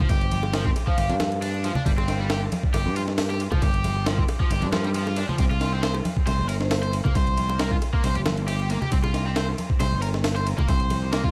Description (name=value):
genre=breakbeat, breaks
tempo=136 BPM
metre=4/4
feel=straight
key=G minor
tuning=A4 = 439 Hz
part: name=cranked stack guitar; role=riff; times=0.0-11.3 s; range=F3 to C5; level=-32 LUFS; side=equal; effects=overdrive, dub echo
part: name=congas and bongos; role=percussion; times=0.0-11.0 s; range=none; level=-35 LUFS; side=equal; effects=none
part: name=picked electric bass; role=bass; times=0.1-11.3 s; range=G1 to G2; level=-28 LUFS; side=equal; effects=tube saturation
part: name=breakbeat sampler-style drum kit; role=drums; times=0.1-11.3 s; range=hi-hat, kick drum, ride cymbal, snare drum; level=-27 LUFS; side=equal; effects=dub echo
part: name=vibraphone with medium mallets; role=melody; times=0.9-1.3, 6.6-6.8 s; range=C5 to F5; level=-37 LUFS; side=equal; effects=AM radio sound, dub echo
room=light reverb, digital ambience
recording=echo-heavy mix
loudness=-24 LUFS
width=mono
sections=0.0-11.3 A section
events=none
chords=0.0 G5; 5.4 C5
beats=| 0.10 0.54 0.98 1.42 | 1.86 2.30 2.74 3.19 | 3.63 4.07 4.51 4.95 | 5.39 5.83 6.27 6.71 | 7.16 7.60 8.04 8.48 | 8.92 9.36 9.80 10.24 | 10.69 11.13